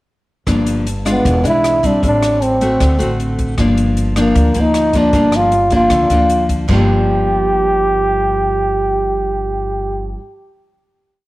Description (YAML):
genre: bossa nova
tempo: 154 BPM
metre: 4/4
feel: straight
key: G minor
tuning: A4 = 440 Hz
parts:
  - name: nylon-string guitar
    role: accompaniment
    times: 0.5-10.2 s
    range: G2 to F#4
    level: -18 LUFS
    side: left 1 dB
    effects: cassette tape
  - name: upright bass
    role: bass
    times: 0.5-10.1 s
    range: E1 to D2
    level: -19 LUFS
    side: equal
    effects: none
  - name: swinging big-band drum kit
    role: drums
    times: 0.5-6.8 s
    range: china cymbal, hi-hat, kick drum, rim click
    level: -23 LUFS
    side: equal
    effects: cassette tape
  - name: breathy trombone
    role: melody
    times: 1.1-10.2 s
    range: Bb3 to G4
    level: -15 LUFS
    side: equal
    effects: none
room: moderate spring reverb, RT60 1.6 s, studio ambience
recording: home recording on cassette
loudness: -12 LUFS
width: side -18 dB against mid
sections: 0.5-6.7 A section; 6.7-9.8 final chord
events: none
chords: 0.5 Gm7; 1.2 E7b9; 2.0 Am7; 2.8 D7; 3.6 Gm7